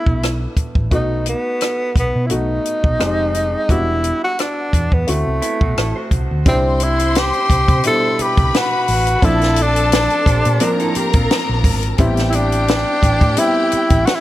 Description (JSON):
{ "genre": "lush 1970s-style soul", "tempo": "87 BPM", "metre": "4/4", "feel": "swing 54% on 16ths", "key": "unclear", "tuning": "A4 = 440 Hz", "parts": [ { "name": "breathy tenor saxophone", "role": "melody", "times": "0.0-14.2 s", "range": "A3 to A4", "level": "-18 LUFS", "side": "equal", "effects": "none" }, { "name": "warm concert grand piano", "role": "accompaniment", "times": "0.0-14.2 s", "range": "B2 to G4", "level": "-24 LUFS", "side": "left 1 dB", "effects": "none" }, { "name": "hollow-body short-scale fingered electric bass", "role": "bass", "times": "0.1-14.0 s", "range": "E1 to C3", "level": "-20 LUFS", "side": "equal", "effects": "none" }, { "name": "compact cocktail drum kit", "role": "drums", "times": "0.1-14.2 s", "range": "hi-hat, kick drum, rim click, snare drum", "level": "-17 LUFS", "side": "equal", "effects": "none" }, { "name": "electric guitar through a small old amp", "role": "riff", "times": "5.4-12.0 s", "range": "B3 to C5", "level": "-26 LUFS", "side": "right 2 dB", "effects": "none" }, { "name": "warm studio string section", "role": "second line", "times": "6.4-14.2 s", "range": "G4 to C6", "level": "-23 LUFS", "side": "left 2 dB", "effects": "none" } ], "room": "light reverb, studio ambience", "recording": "none", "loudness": "-14 LUFS", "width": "side -14 dB against mid", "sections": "0.0-6.5 A section; 6.5-14.2 B section", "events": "none", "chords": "0.0 G69 (rootless); 0.9 B7; 3.0 Fm9; 3.7 Em9; 5.1 D7; 6.5 Cmaj7; 9.2 Bbmaj7; 12.0 Am7", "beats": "0.22 | 0.92 1.61 2.30 3.00 | 3.69 4.38 5.08 5.77 | 6.46 7.16 7.85 8.54 | 9.23 9.92 10.61 11.30 | 11.99 12.68 13.38 14.07" }